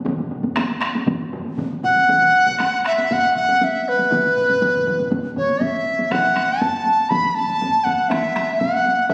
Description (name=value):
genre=japanese traditional, taiko drum ensemble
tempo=119 BPM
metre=4/4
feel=straight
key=unclear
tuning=A4 = 439 Hz
part: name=taiko ensemble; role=percussion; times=0.1-9.1 s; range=none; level=-28 LUFS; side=equal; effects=none
part: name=taiko ensemble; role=percussion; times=0.1-8.0 s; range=none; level=-33 LUFS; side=equal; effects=none
part: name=taiko ensemble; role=percussion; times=0.1-9.1 s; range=none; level=-34 LUFS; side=equal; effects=none
part: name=taiko ensemble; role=percussion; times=0.1-9.1 s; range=none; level=-33 LUFS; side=equal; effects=none
part: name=large dizi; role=melody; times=1.8-9.1 s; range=B4 to B5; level=-19 LUFS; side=equal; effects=none
room=wet concert hall reverb, RT60 1.9 s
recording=recorded on a phone in the room, studio reverb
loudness=-19 LUFS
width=mono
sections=0.0-6.1 A section; 6.1-9.1 B section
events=speeding up 0.0-9.1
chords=none